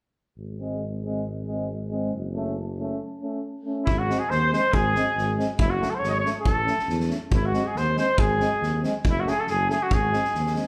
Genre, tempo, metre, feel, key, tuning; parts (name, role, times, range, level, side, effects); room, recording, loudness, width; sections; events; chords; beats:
balkan folk, Balkan brass band; 139 BPM; 2/4; swing 53% on 16ths; G# phrygian dominant; A4 = 441 Hz
dark tuba; bass; 0.4-10.6 s; F#1 to E2; -31 LUFS; equal
mellow euphonium; accompaniment; 0.6-10.6 s; B#3 to C#4; -36 LUFS; equal
warm euphonium; accompaniment; 0.6-10.6 s; G#3 to A3; -36 LUFS; equal
cornet with straight mute; melody; 3.8-10.6 s; E4 to D#5; -27 LUFS; equal
clear alto saxophone; second line; 3.9-10.6 s; E4 to D#5; -35 LUFS; equal
loose indie drum kit; percussion; 3.9-10.6 s; kick drum, snare drum; -30 LUFS; equal
moderate large studio reverb, RT60 1.2 s; band playing live in one room; -25 LUFS; mono
0.4-3.9 A section; 3.9-10.7 B section
0.4 G#; 2.1 F#m; 3.0 A; 3.9 G#; 5.6 F#m; 6.5 A; 7.3 G#; 9.0 F#m; 9.9 G#
| 0.37 0.81 | 1.25 1.69 | 2.12 2.56 | 2.99 3.43 | 3.86 4.30 | 4.73 5.16 | 5.59 6.02 | 6.45 6.88 | 7.32 7.75 | 8.18 8.61 | 9.04 9.47 | 9.91 10.34